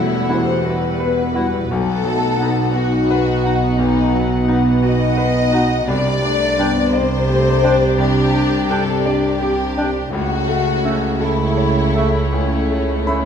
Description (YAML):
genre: cinematic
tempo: 57 BPM (dotted quarters)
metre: 6/8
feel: rubato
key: unclear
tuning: A4 = 440 Hz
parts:
  - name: dark studio violin section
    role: melody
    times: 0.0-13.3 s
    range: C#5 to F#5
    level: -29 LUFS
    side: left 4 dB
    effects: none
  - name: dark studio violin section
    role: second line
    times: 0.0-13.3 s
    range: C#4 to D#5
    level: -21 LUFS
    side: left 4 dB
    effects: none
  - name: bright concert grand piano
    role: accompaniment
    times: 0.0-13.3 s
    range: B1 to B5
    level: -24 LUFS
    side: left 2 dB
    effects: none
  - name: warm studio viola section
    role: accompaniment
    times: 0.0-13.3 s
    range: G3 to G4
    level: -23 LUFS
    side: right 1 dB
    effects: none
  - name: mellow French horn section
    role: sustained chords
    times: 0.0-13.3 s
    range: F#3 to D#4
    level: -23 LUFS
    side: left 2 dB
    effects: none
  - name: dark studio double bass section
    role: bass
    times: 0.0-13.3 s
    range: E1 to C#2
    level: -24 LUFS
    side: right 3 dB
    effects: none
  - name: warm symphonic cello section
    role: bass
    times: 0.0-13.3 s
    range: E2 to C#3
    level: -22 LUFS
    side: right 3 dB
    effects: none
  - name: dark cor anglais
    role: second line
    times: 0.3-13.2 s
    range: E5 to G5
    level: -29 LUFS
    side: right 4 dB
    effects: none
  - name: warm clarinet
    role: second line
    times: 0.3-13.2 s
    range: A3 to E4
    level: -28 LUFS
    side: left 2 dB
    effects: none
room: wet recital hall reverb, RT60 1.5 s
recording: minimal, uncompressed stereo recording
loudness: -15 LUFS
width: side -7 dB against mid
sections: 0.0-13.3 A section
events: none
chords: 0.0 Emadd9; 1.7 B7; 5.9 Csus2; 10.1 A/C#